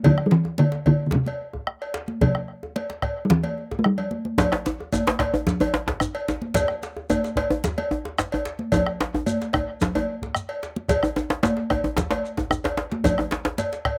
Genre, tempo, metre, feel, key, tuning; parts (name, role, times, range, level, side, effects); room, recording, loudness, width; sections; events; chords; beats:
west african traditional, West African drum ensemble; 111 BPM; 4/4; straight; C major pentatonic; A4 = 441 Hz
bombo; percussion; 0.0-14.0 s; -29 LUFS; equal
congas; percussion; 0.0-13.7 s; -30 LUFS; equal
cowbell; percussion; 0.0-14.0 s; -30 LUFS; equal; slapback echo
djembe; percussion; 0.0-13.8 s; -35 LUFS; equal
talking drum; melody; 0.1-4.3 s; C3 to A3; -21 LUFS; equal
djembe; percussion; 4.4-13.6 s; -27 LUFS; equal
shekere; percussion; 4.4-13.8 s; -37 LUFS; equal
light reverb; recorded outdoors, with no room sound; -24 LUFS; mono
0.0-4.4 A section; 4.4-14.0 B section
drum fill 4.0-4.4, 12.5-13.0
| 0.04 0.59 1.13 1.67 | 2.21 2.76 3.30 3.84 | 4.39 4.93 5.47 6.01 | 6.55 7.10 7.64 8.18 | 8.72 9.26 9.80 10.34 | 10.88 11.43 11.96 12.51 | 13.04 13.59